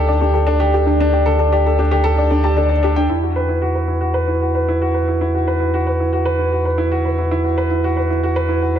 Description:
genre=piano and strings electronica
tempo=114 BPM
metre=4/4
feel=straight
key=E minor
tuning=A4 = 444 Hz
part: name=soft round pluck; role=arpeggios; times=0.0-3.1 s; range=D4 to D5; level=-22 LUFS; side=left 1 dB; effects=analog chorus, tape echo
part: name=warm upright piano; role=riff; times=0.0-8.8 s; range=D4 to A5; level=-18 LUFS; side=right 1 dB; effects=low-pass filter, tape echo
part: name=warm sub bass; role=bass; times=0.0-8.8 s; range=D2 to E2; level=-18 LUFS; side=equal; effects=none
room=light reverb, small room ambience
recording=none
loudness=-15 LUFS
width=side -9 dB against mid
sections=0.0-3.1 A section; 3.1-8.8 B section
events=none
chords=0.0 Dsus4; 3.1 Esus2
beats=0.48 | 1.00 1.53 2.06 2.58 | 3.11 3.63 4.16 4.69 | 5.21 5.74 6.27 6.79 | 7.32 7.84 8.37

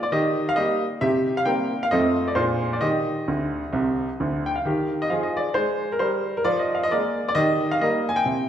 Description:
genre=jazz, stride piano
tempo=132 BPM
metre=4/4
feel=swing 62% on 8ths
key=Eb major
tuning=A4 = 440 Hz
part: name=clear baby grand piano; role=solo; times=0.0-8.5 s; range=C2 to Ab5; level=-21 LUFS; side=equal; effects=none
room=wet recital hall reverb, RT60 1.6 s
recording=recorded in a church or concert hall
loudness=-21 LUFS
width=side -9 dB against mid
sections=0.0-4.6 A section; 4.6-8.5 A section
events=grand piano fill 3.3-4.6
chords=0.1 Eb; 1.0 C7; 1.9 F7; 2.4 Bb9; 2.8 Eb; 6.5 Bb5/F; 7.4 Eb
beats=0.11 0.56 | 1.02 1.47 1.92 2.38 | 2.83 3.28 3.73 4.19 | 4.64 5.10 5.55 6.00 | 6.46 6.91 7.37 7.82 | 8.28

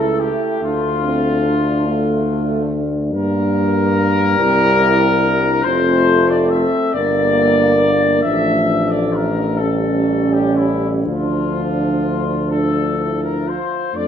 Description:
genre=classical, hymn-like piece for brass band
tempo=41-48 BPM (dotted quarters)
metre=6/8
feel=rubato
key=D minor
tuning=A4 = 441 Hz
part: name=mellow trumpet section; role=melody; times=0.0-14.1 s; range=E4 to E5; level=-19 LUFS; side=left 4 dB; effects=none
part: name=dark French horn section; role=second line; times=0.0-14.1 s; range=A3 to F4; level=-23 LUFS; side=right 6 dB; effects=none
part: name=mellow euphonium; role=accompaniment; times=0.0-14.1 s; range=A3 to F4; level=-21 LUFS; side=left 1 dB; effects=none
part: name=warm trombone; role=accompaniment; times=0.0-14.1 s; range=F3 to Bb3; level=-22 LUFS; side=right 2 dB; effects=none
part: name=clear tuba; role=bass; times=0.0-14.1 s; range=F1 to G2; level=-21 LUFS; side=equal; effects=none
room=moderate scoring stage reverb, RT60 2.0 s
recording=none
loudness=-14 LUFS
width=side -8 dB against mid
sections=0.0-13.9 A section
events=none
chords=0.0 A/C#; 0.6 Dm; 3.1 Gm; 4.4 C7; 5.7 F; 6.9 Gm; 8.2 Dm/A; 9.6 A7; 11.1 Dm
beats=| 0.61 1.86 | 3.13 4.39 | 5.65 6.95 | 8.24 9.61 | 11.05 12.51 | 13.95

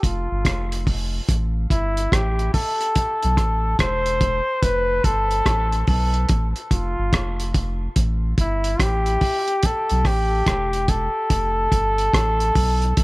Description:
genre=roots reggae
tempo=72 BPM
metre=4/4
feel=swing 64% on 16ths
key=A minor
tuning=A4 = 439 Hz
part: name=warm flugelhorn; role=melody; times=0.0-13.0 s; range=E4 to C5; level=-22 LUFS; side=equal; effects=tape echo
part: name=soft dub sub bass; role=bass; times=0.0-13.0 s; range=E1 to B1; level=-23 LUFS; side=equal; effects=none
part: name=cloth-damped thuddy drum kit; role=drums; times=0.0-13.0 s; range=hi-hat, kick drum, rim click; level=-21 LUFS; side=equal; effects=none
room=light reverb, small room ambience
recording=none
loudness=-18 LUFS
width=side -21 dB against mid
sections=0.0-13.0 A section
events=none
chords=0.0 N.C.; 1.3 Am; 4.6 F; 8.0 A5; 11.3 F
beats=0.45 | 1.28 2.12 2.96 3.79 | 4.63 5.46 6.29 7.13 | 7.96 8.80 9.63 10.47 | 11.30 12.13 12.97

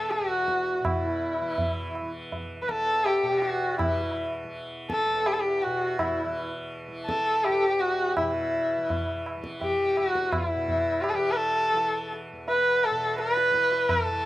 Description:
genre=indian classical, Hindustani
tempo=83 BPM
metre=5/4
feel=straight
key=E raga bhimpalasi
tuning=A4 = 440 Hz
part: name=rich sarangi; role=melody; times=0.0-14.3 s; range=E4 to B4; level=-25 LUFS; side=equal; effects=none
part: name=pedal harmonium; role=second line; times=0.0-8.3 s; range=E4 to A4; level=-33 LUFS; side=right 2 dB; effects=slapback echo
part: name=tanpura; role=drone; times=0.0-14.3 s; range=E2 to E3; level=-36 LUFS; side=equal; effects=none
part: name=tabla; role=percussion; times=0.1-14.2 s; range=none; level=-32 LUFS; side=right 1 dB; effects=slapback echo
room=light reverb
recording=recorded outdoors, with no room sound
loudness=-24 LUFS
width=side -16 dB against mid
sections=0.0-8.2 A section; 8.2-14.3 B section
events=speeding up 0.0-14.3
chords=none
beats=0.11 | 0.85 1.59 2.33 3.07 3.81 | 4.54 5.27 6.00 6.73 7.45 | 8.18 8.90 9.62 10.34 11.06 | 11.77 12.48 13.19 13.90

